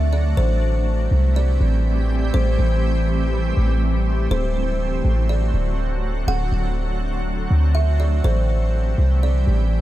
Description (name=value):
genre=hip hop, atmospheric cloud-rap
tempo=122 BPM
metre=4/4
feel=half-time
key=A dorian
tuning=A4 = 440 Hz
part: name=buzzing kalimba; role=melody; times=0.0-9.8 s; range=C5 to F#5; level=-28 LUFS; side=equal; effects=digital delay
part: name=shimmering ambient pad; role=sustained chords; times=0.0-9.8 s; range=D3 to G4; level=-26 LUFS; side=right 1 dB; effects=chorus, built-in reverb
part: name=warm 808-style bass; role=bass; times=0.0-9.8 s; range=D1 to D2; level=-18 LUFS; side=equal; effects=none
room=small room reverb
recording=dark, warm production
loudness=-17 LUFS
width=side -14 dB against mid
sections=0.0-9.8 A section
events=none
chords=0.4 Am7; 4.3 D7; 8.2 Am7